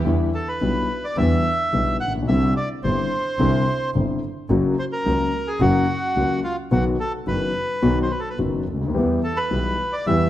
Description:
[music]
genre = tango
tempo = 108 BPM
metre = 4/4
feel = rubato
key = E minor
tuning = A4 = 441 Hz
[part]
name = warm concert grand piano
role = accompaniment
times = 0.0-10.3 s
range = F#1 to G4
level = -22 LUFS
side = left 2 dB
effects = none
[part]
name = clear double bass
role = bass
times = 0.0-10.3 s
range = F#1 to E2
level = -25 LUFS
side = right 2 dB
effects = none
[part]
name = bandoneon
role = melody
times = 0.3-10.3 s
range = F4 to F#5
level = -24 LUFS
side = right 1 dB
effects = none
[sound]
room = moderate scoring stage reverb, RT60 1.9 s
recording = none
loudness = -19 LUFS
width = side -13 dB against mid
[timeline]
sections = 0.0-10.3 A section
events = none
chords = 0.0 Em7; 2.3 Cadd9; 4.5 F#; 6.7 B; 8.9 Em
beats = | 0.05 0.61 1.17 1.73 | 2.28 2.84 3.39 3.95 | 4.50 5.05 5.61 6.16 | 6.71 7.27 7.83 8.39 | 8.95 9.51 10.07

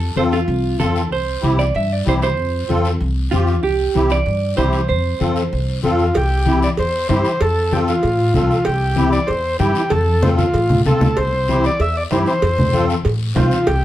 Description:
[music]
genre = latin, cumbia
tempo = 191 BPM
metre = 4/4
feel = straight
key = C major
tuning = A4 = 439 Hz
[part]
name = clean electric guitar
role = second line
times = 0.0-5.8 s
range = F4 to E5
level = -21 LUFS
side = right 5 dB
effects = none
[part]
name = upright bass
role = bass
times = 0.0-13.8 s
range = C2 to A2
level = -20 LUFS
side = equal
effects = none
[part]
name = musette accordion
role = accompaniment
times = 0.2-13.6 s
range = C4 to C5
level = -20 LUFS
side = left 2 dB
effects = none
[part]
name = congas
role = percussion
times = 0.2-13.8 s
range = none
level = -22 LUFS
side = left 1 dB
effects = none
[part]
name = guiro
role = percussion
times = 0.2-13.8 s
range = none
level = -34 LUFS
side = left 6 dB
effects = none
[part]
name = combo organ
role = melody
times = 5.9-13.8 s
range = F4 to E5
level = -19 LUFS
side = equal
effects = none
[part]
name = cowbell and timbales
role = percussion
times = 6.2-13.8 s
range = none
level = -24 LUFS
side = right 3 dB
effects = none
[sound]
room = wet studio reverb, RT60 0.5 s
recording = heard from further back in the room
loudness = -15 LUFS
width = side -13 dB against mid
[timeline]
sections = 0.0-6.2 A section; 6.2-13.8 B section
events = clean electric guitar solo 0.0-6.2; drum fill 9.9-11.2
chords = 0.0 F; 1.1 C; 2.4 F; 3.6 C; 4.9 F; 6.2 C; 7.4 F; 8.7 C; 9.9 F; 11.2 C; 12.4 F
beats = 0.17 0.48 0.80 | 1.11 1.43 1.75 2.06 | 2.38 2.69 3.01 3.32 | 3.64 3.95 4.26 4.58 | 4.89 5.21 5.52 5.84 | 6.15 6.46 6.78 7.09 | 7.41 7.72 8.03 8.35 | 8.66 8.97 9.29 9.60 | 9.91 10.23 10.54 10.85 | 11.16 11.48 11.79 12.10 | 12.42 12.73 13.04 13.36 | 13.67

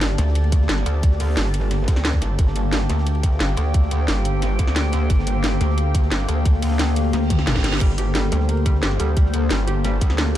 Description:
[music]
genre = dark technical drum and bass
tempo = 177 BPM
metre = 4/4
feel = straight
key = G minor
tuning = A4 = 436 Hz
[part]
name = dark analog pad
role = sustained chords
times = 0.0-10.4 s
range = Bb3 to G5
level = -29 LUFS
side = equal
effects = chorus, phaser, sidechain pumping
[part]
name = metallic wobble bass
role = bass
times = 0.0-10.4 s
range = G1 to D2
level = -21 LUFS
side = equal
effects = chorus, overdrive, sidechain pumping
[part]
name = crunchy breakbeat drum kit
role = drums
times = 0.0-10.4 s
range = hi-hat, ride cymbal, snare drum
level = -38 LUFS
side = equal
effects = none
[part]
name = drum and bass drum kit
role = drums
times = 0.0-10.4 s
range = crash cymbal, hi-hat, snare drum, toms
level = -25 LUFS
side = equal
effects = none
[part]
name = ethereal airy pad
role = texture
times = 0.0-10.4 s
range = Bb3 to A5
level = -29 LUFS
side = left 4 dB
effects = ensemble chorus, built-in reverb, sidechain pumping
[part]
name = pulsing pluck wobble bass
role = bass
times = 0.2-0.8, 2.9-3.6, 5.6-9.0 s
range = G1 to D2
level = -20 LUFS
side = equal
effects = chorus
[part]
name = electronic kick drum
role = drums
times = 0.5-10.1 s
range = none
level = -18 LUFS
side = equal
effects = none
[part]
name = reverse cymbal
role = sound effects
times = 7.3-7.8 s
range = none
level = -31 LUFS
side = right 7 dB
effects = none
[part]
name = felt-muted upright piano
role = arpeggios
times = 7.8-10.4 s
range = G3 to G4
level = -29 LUFS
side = right 3 dB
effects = sidechain pumping, tape echo
[sound]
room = digital ambience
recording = dark, warm production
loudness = -17 LUFS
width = side -12 dB against mid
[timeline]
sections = 0.0-10.4 A section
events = reverse cymbal 7.3-7.8; drum fill 7.3-7.8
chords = 0.0 Gmadd9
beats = 0.01 0.35 0.69 | 1.03 1.37 1.71 2.05 | 2.39 2.73 3.06 3.40 | 3.74 4.08 4.42 4.76 | 5.10 5.44 5.78 6.12 | 6.46 6.79 7.13 7.47 | 7.81 8.15 8.49 8.83 | 9.17 9.51 9.84 10.18

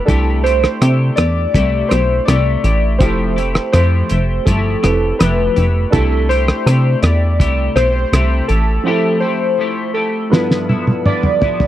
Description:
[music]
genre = indie pop, bedroom pop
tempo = 82 BPM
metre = 4/4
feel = straight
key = C major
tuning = A4 = 440 Hz
[part]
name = warbly lo-fi synth keys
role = melody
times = 0.0-11.7 s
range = A4 to D5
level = -18 LUFS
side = equal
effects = wide subtle chorus
[part]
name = semi-hollow electric guitar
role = accompaniment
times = 0.0-11.7 s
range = G2 to G4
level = -21 LUFS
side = left 4 dB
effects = analog chorus, vibrato effect
[part]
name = warm upright piano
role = accompaniment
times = 0.0-11.7 s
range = G2 to B4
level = -25 LUFS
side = right 5 dB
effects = cassette tape
[part]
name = plucky analog bass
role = bass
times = 0.1-8.8 s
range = F1 to C3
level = -14 LUFS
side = equal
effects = none
[part]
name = cloth-damped thuddy drum kit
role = drums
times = 0.1-11.7 s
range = hi-hat, kick drum, rim click, snare drum, toms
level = -15 LUFS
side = equal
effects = none
[sound]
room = little or no reverb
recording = dry, close 1970s-style studio recording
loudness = -12 LUFS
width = side -13 dB against mid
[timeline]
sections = 0.0-11.7 A section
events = drum fill 10.3-11.7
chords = 0.1 C6; 3.0 Fmaj9; 5.9 C6; 8.9 Fmaj9; 10.3 G13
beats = | 0.08 0.81 1.54 2.27 | 3.01 3.74 4.47 5.20 | 5.93 6.67 7.40 8.13 | 8.86 9.60 10.33 11.06

